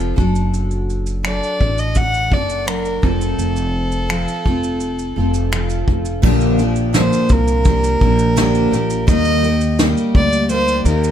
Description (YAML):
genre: acoustic pop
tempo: 84 BPM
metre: 4/4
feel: straight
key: Bb major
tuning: A4 = 435 Hz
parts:
  - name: picked steel-string acoustic guitar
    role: accompaniment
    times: 0.0-11.1 s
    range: Bb2 to A4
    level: -19 LUFS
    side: equal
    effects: double-tracked left and right
  - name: upright bass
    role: bass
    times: 0.0-11.1 s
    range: F1 to Eb2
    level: -20 LUFS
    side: equal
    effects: none
  - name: soft brush drum kit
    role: drums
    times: 0.0-11.1 s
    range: crash cymbal, finger snaps, kick drum, shaker, snare drum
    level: -18 LUFS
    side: equal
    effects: none
  - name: warm violin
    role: melody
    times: 1.2-11.1 s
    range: A4 to F#5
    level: -21 LUFS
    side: equal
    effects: ping-pong delay
room: small room reverb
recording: none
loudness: -14 LUFS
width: side -10 dB against mid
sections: 0.0-6.2 A section; 6.2-11.1 B section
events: none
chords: 0.2 D/F#; 3.0 F; 6.2 Bb6; 9.1 Eb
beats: | 0.53 1.25 1.96 2.67 | 3.38 4.10 4.81 5.52 | 6.23 6.95 7.66 8.37 | 9.08 9.79 10.50